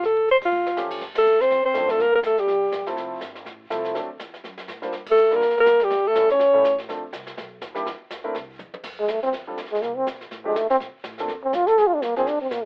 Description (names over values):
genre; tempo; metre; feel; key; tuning
jazz, small-group swing and bop; 245 BPM; 4/4; swing 57% on 8ths; D minor, F major from 8.8 s; A4 = 443 Hz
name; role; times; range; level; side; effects
breathy alto saxophone; melody; 0.0-2.9, 5.1-6.8 s; F4 to C#5; -17 LUFS; equal; none
upright bass; bass; 0.0-12.7 s; F1 to Bb2; -46 LUFS; equal; none
jazz brush drum kit; drums; 0.0-12.7 s; brushed snare drum, crash cymbal, hi-hat, kick drum, ride cymbal, snare drum, toms; -36 LUFS; equal; none
warm concert grand piano; accompaniment; 0.8-12.3 s; E#3 to C5; -28 LUFS; equal; none
breathy trombone; second line; 1.2-2.9, 5.1-6.8, 9.0-12.7 s; G3 to A4; -22 LUFS; equal; none
room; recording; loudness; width
light reverb; rough home demo mix, telephone sound; -19 LUFS; side -38 dB against mid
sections
0.0-1.0 A section; 1.0-8.8 B section; 8.8-12.7 C section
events
drum fill 0.3-0.8, 8.6; band accent 0.4, 1.1, 5.1; trombone solo 8.8-12.7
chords
0.0 F; 0.5 Aaug7; 1.0 Dm7; 2.0 Gm9; 2.5 C7; 3.0 Fmaj7; 4.0 D7; 4.9 Gm7; 5.9 A7; 6.9 Dm7; 7.4 B; 7.9 Bbmaj9#11; 8.4 C; 8.8 Fsus2; 9.8 Bbsus2; 10.3 F13; 10.8 Bbmaj7; 11.8 Bbadd9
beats
| 0.03 0.28 0.52 0.77 | 1.01 1.26 1.50 1.75 | 1.99 2.24 2.48 2.73 | 2.97 3.22 3.46 3.71 | 3.95 4.19 4.44 4.68 | 4.93 5.17 5.42 5.66 | 5.91 6.15 6.40 6.64 | 6.89 7.13 7.38 7.62 | 7.87 8.11 8.36 8.60 | 8.85 9.09 9.34 9.58 | 9.82 10.07 10.31 10.56 | 10.80 11.05 11.29 11.54 | 11.78 12.03 12.27 12.52